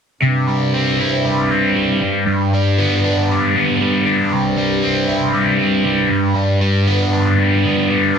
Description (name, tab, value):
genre	rock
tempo	117 BPM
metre	4/4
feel	straight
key	unclear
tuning	A4 = 440 Hz
part	cranked stack guitar	riff	0.2-8.2 s	G2 to E4	-14 LUFS	equal	overdrive, phaser
part	pedal harmonium	drone	0.2-8.2 s	G2	-22 LUFS	right 1 dB	stereo widening
room	moderate plate reverb, RT60 3.2 s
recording	none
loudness	-14 LUFS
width	side -7 dB against mid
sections	0.2-8.2 A section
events	none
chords	0.2 C; 2.0 G; 4.3 C; 6.1 G